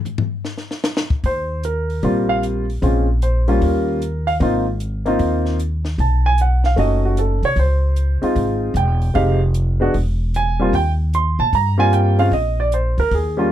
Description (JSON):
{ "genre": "jazz piano trio", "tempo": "152 BPM", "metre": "4/4", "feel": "swing 65% on 8ths", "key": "Eb major", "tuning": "A4 = 439 Hz", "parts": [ { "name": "compact cocktail drum kit", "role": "drums", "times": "0.1-13.2 s", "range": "hi-hat, kick drum, snare drum, toms", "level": "-24 LUFS", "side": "left 3 dB", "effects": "none" }, { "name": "upright bass", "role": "bass", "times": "1.2-13.5 s", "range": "Fb1 to Bb2", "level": "-18 LUFS", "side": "equal", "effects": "none" }, { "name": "warm upright piano", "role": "melody", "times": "1.3-13.5 s", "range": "G3 to C6", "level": "-19 LUFS", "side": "right 1 dB", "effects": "none" } ], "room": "little or no reverb", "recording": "close, detailed microphones", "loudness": "-16 LUFS", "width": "side -11 dB against mid", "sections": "0.0-1.2 A section; 1.2-13.5 B section", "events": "drum solo 0.0-1.2", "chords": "0.0 N.C.; 1.2 Eb69; 2.8 Bbm7; 3.6 Eb7; 4.4 Ab69; 6.0 B9; 7.6 Dbmaj7; 9.2 Fm7; 9.9 E; 10.7 Eb69; 12.3 Bbadd9", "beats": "0.06 0.45 0.84 | 1.24 1.64 2.03 2.43 | 2.82 3.22 3.61 4.01 | 4.41 4.80 5.20 5.59 | 5.99 6.38 6.78 7.17 | 7.57 7.96 8.36 8.76 | 9.15 9.55 9.94 10.34 | 10.74 11.13 11.53 11.92 | 12.32 12.72 13.11 13.51" }